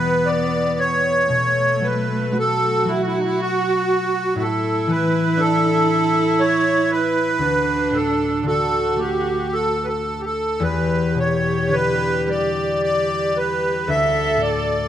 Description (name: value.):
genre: celtic folk, Celtic slow air.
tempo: 54-60 BPM.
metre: 3/4.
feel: rubato.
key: E dorian.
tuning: A4 = 441 Hz.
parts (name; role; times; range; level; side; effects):
accordion; melody; 0.0-14.9 s; D#4 to E5; -20 LUFS; equal; light tremolo tuning.
dark viola; second line; 0.0-14.9 s; A3 to A4; -23 LUFS; right 4 dB; none.
concert harp; accompaniment; 0.0-14.9 s; D2 to E4; -24 LUFS; left 4 dB; none.
room: light reverb.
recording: close, detailed microphones.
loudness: -17 LUFS.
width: side -10 dB against mid.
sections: 0.0-14.9 A section.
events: none.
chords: 0.0 Em; 1.3 B5; 4.4 Asus4; 7.4 D; 10.6 Em7; 13.9 D5.